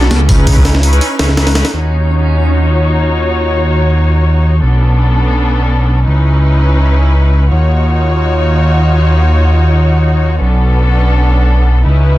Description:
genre	drum and bass, jungle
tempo	free time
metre	none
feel	none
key	unclear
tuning	A4 = 440 Hz
part	muted studio string section	sustained chords	0.0-12.2 s	B3 to Db5	-16 LUFS	left 1 dB	low-pass filter
part	dark detuned saw bass	bass	0.0-12.2 s	B1 to Eb2	-10 LUFS	equal	none
part	breakbeat sampler-style drum kit	drums	0.0-1.7 s	hi-hat, kick drum, snare drum	-12 LUFS	equal	studio ambience
part	backwards swelling texture	texture	0.1-1.7 s	Db4 to Db5	-26 LUFS	right 3 dB	none
room	little or no reverb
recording	dense, heavily limited modern master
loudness	-9 LUFS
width	side -16 dB against mid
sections	0.0-1.7 A section; 1.7-12.2 B section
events	drop 0.0-1.7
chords	0.3 Dbm9; 1.7 Ebm9; 4.6 Bm9; 6.1 Dbm9; 7.5 Ebm9; 10.4 Bm9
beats	free time

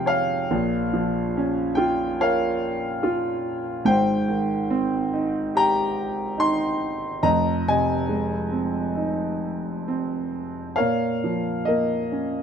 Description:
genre	classical, lyrical solo piano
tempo	65-74 BPM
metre	4/4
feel	rubato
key	F minor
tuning	A4 = 441 Hz
part	warm concert grand piano	solo	0.0-12.4 s	F1 to C6	-21 LUFS	equal	none
room	light reverb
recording	close, detailed microphones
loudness	-21 LUFS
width	side -7 dB against mid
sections	0.0-10.8 A section; 10.8-12.4 B section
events	none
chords	0.0 Fm; 0.5 Bbm; 3.8 Abmaj7; 7.2 Fm7; 10.8 Bbm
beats	| 0.50 1.34 2.19 3.02 | 3.85 4.70 5.55 6.38 | 7.23 8.08 8.95 9.87 | 10.78 11.67

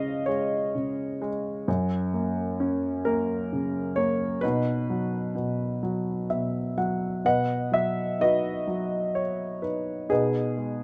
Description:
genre	classical, lyrical solo piano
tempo	43 BPM (dotted quarters)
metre	6/8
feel	rubato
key	B major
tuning	A4 = 437 Hz
part	dark grand piano	solo	0.0-10.8 s	F#2 to F#5	-27 LUFS	equal	none
room	light reverb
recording	dark, warm production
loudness	-27 LUFS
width	mono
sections	0.0-7.3 A section; 7.3-10.8 B section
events	grand piano fill 5.8-7.3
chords	0.0 C#; 1.7 F#; 4.4 B; 10.1 G#m/B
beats	0.28 | 1.68 3.06 | 4.43 5.83 | 7.25 8.68 | 10.10

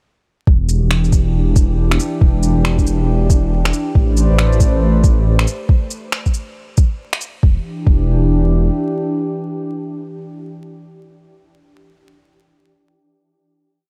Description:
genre	future garage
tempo	138 BPM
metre	4/4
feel	swing 63% on 16ths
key	E minor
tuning	A4 = 440 Hz
part	warbly tape-like pad	sustained chords	0.5-10.7 s	E3 to D5	-24 LUFS	equal	chorus, built-in reverb, sidechain pumping
part	swelling detuned saw bass	bass	0.5-8.7 s	E1 to A1	-17 LUFS	equal	sidechain pumping
part	electronic kick drum	drums	0.5-8.0 s	none	-15 LUFS	equal	overdrive
part	electronic shaker and finger snaps	drums	0.7-7.3 s	none	-25 LUFS	equal	overdrive
room	digital ambience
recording	vinyl crackle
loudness	-16 LUFS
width	mono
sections	0.5-7.4 groove; 7.4-10.9 final chord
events	none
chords	0.5 Em7; 4.0 Am11; 7.4 Em7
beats	| 0.47 0.91 1.34 1.78 | 2.21 2.65 3.08 3.52 | 3.95 4.39 4.82 5.25 | 5.69 6.12 6.56 6.99 | 7.43 7.86 8.30 8.73 | 9.17 9.60 10.04 10.47

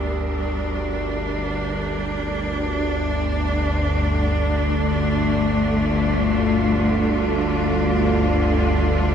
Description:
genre	dark ambient drone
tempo	free time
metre	none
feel	none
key	unclear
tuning	A4 = 441 Hz
part	clear studio cello section	sustained chords	0.0-9.1 s	G2 to Bb4	-21 LUFS	left 1 dB	shimmer reverb
part	dark detuned synth bell	arpeggios	0.0-9.1 s	G4	-43 LUFS	right 1 dB	none
part	overtone-sweeping drone	drone	0.0-9.1 s	G1 to D2	-22 LUFS	right 1 dB	chorus, built-in reverb, phaser
part	bronze singing bowl	texture	0.0-9.1 s	G4	-41 LUFS	left 1 dB	none
room	wet plate reverb, RT60 2.8 s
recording	echo-heavy mix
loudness	-19 LUFS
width	side -8 dB against mid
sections	0.0-9.1 A section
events	fade-in on synth drone 0.0-9.1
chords	0.0 Gm; 2.7 Dm/G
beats	free time

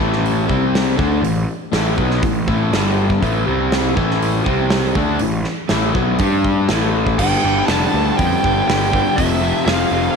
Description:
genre	classic rock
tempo	121 BPM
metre	4/4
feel	straight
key	A minor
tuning	A4 = 440 Hz
part	distorted electric guitar	riff	0.0-10.2 s	F2 to G4	-20 LUFS	left 11 dB	distortion
part	overdriven semi-hollow guitar	riff	0.0-10.2 s	G2 to B4	-22 LUFS	right 12 dB	none
part	fuzz picked electric bass	bass	0.0-10.1 s	F1 to G2	-20 LUFS	right 1 dB	overdrive
part	big rock drum kit	drums	0.1-9.8 s	crash cymbal, hi-hat, kick drum, snare drum	-21 LUFS	right 1 dB	none
part	bluesy overdriven lead guitar	melody	7.2-10.1 s	E5 to A5	-20 LUFS	right 2 dB	distortion
room	light reverb, small room ambience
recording	1960s-style stereo with parts hard left and right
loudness	-14 LUFS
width	side -5 dB against mid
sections	0.0-7.2 A section; 7.2-10.2 B section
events	none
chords	0.0 A5; 0.5 C5; 1.0 A5; 2.7 G5; 3.2 A5; 3.5 C5; 4.0 A5; 4.5 C5; 5.0 A5; 6.2 G5; 6.7 A5; 7.2 G; 9.2 F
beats	0.24 0.73 | 1.23 1.73 2.22 2.72 | 3.22 3.71 4.21 4.71 | 5.21 5.70 6.20 6.70 | 7.19 7.69 8.19 8.68 | 9.18 9.68

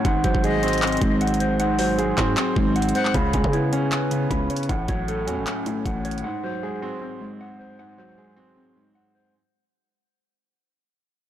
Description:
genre	hip hop, trap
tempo	155 BPM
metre	4/4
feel	half-time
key	unclear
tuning	A4 = 440 Hz
part	felt-muted upright piano	accompaniment	0.0-9.4 s	G#2 to C#4	-26 LUFS	right 5 dB	low-pass filter
part	mellow electric guitar	arpeggios	0.0-9.3 s	C#3 to B5	-26 LUFS	left 2 dB	low-pass filter, ping-pong delay
part	growling 808-style bass	bass	0.0-6.2 s	G#1 to C#3	-26 LUFS	equal	none
part	trap drum kit	drums	0.0-6.2 s	handclaps, hi-hat, kick drum	-26 LUFS	equal	none
part	breathy bright jazz flute	second line	0.4-3.1 s	D#5 to F#5	-29 LUFS	left 7 dB	ping-pong delay
room	little or no reverb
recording	blown-out, overdriven recording, overdrive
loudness	-20 LUFS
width	side -11 dB against mid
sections	0.0-3.1 A section; 3.1-9.3 B section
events	fade-out 3.1-9.3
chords	0.0 G#7; 3.1 C#m7; 4.7 A6; 6.2 G#7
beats	| 0.05 0.43 0.82 1.21 | 1.60 1.98 2.37 2.76 | 3.15 3.53 3.92 4.31 | 4.69 5.08 5.47 5.86 | 6.24 6.63 7.02 7.40 | 7.79 8.18 8.56 8.95

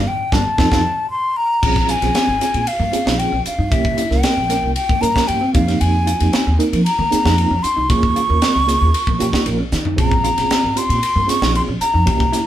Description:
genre	electric jazz fusion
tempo	115 BPM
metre	4/4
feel	straight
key	Bb dorian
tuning	A4 = 438 Hz
part	breathy hollow jazz flute	melody	0.0-12.5 s	E5 to Db6	-19 LUFS	left 1 dB	none
part	upright bass	bass	0.0-12.3 s	G1 to F3	-20 LUFS	equal	none
part	mellow reed electric piano	accompaniment	0.3-12.5 s	Bb3 to Bb4	-22 LUFS	right 2 dB	fast tremolo
part	mellow electric guitar	stabs	0.3-12.5 s	G3 to F4	-26 LUFS	equal	none
part	crisp fusion drum kit	drums	0.3-12.5 s	crash cymbal, hi-hat, kick drum, ride cymbal, snare drum, toms	-21 LUFS	equal	none
room	moderate studio reverb, RT60 0.5 s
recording	band playing live in one room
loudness	-14 LUFS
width	side -12 dB against mid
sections	0.0-1.6 A section; 1.6-12.5 B section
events	band accent 0.0-1.6; drum fill 1.4, 9.7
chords	0.0 Gm7; 0.6 F7; 1.6 Bbm7; 3.7 C7b9; 5.5 F7sus4; 7.9 Eb9sus4; 10.0 Bbm7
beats	0.06 0.58 1.10 | 1.63 2.15 2.67 3.19 | 3.71 4.24 4.76 5.28 | 5.80 6.33 6.85 7.37 | 7.89 8.41 8.94 9.46 | 9.98 10.50 11.02 11.54 | 12.06

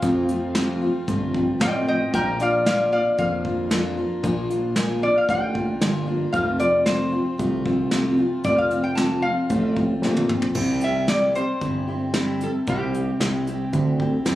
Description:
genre	honky-tonk and classic country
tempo	114 BPM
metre	4/4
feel	straight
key	F major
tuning	A4 = 443 Hz
part	lap resonator guitar	melody	0.0-13.7 s	G4 to A5	-23 LUFS	left 1 dB	none
part	picked steel-string acoustic guitar	accompaniment	0.0-14.4 s	F2 to G4	-24 LUFS	left 1 dB	none
part	fat analog bass	bass	0.0-14.4 s	F1 to F2	-25 LUFS	right 1 dB	none
part	soft brush drum kit	drums	0.0-14.4 s	crash cymbal, hi-hat, kick drum, snare drum, toms	-28 LUFS	equal	none
room	light reverb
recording	recorded on a phone in the room, club reverb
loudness	-20 LUFS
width	side -14 dB against mid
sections	0.0-10.6 A section; 10.6-14.4 B section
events	resonator guitar played with a steel bar solo 0.0-10.6; drum fill 10.0-10.6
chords	0.0 F; 2.1 Bb; 6.3 F; 10.6 C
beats	| 0.03 0.56 1.08 1.61 | 2.13 2.66 3.19 3.71 | 4.24 4.76 5.29 5.82 | 6.34 6.87 7.40 7.92 | 8.45 8.98 9.51 10.03 | 10.56 11.09 11.62 12.15 | 12.68 13.21 13.74 14.26

